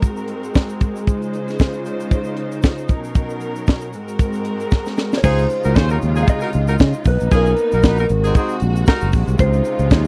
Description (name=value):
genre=disco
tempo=115 BPM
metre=4/4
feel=swing 56% on 16ths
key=Db major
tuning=A4 = 439 Hz
part: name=clear studio string section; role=sustained chords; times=0.0-10.1 s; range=Ab2 to C5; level=-27 LUFS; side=equal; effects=none
part: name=tight funk drum kit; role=drums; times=0.0-10.1 s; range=crash cymbal, hi-hat, kick drum, snare drum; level=-17 LUFS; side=equal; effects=none
part: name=tube shaker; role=percussion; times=0.0-10.1 s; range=none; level=-49 LUFS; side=equal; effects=none
part: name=mellow electric guitar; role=melody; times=5.2-10.1 s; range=Bb4 to F5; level=-24 LUFS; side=equal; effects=none
part: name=warm horn section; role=stabs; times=5.2-9.1 s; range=C4 to C5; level=-25 LUFS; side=equal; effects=none
part: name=fingered electric bass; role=bass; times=5.2-10.1 s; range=Gb1 to Db3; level=-20 LUFS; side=equal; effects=none
room=little or no reverb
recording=dry, close 1970s-style studio recording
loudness=-18 LUFS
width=mono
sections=0.0-5.2 A section; 5.2-10.1 B section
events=drum fill 4.7-5.2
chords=0.0 Ab9; 1.1 Dbmaj9; 2.9 Cbmaj9; 3.9 Ab9; 5.2 Dbmaj9; 7.1 Cbmaj9; 8.1 Ab9; 9.4 Dbmaj9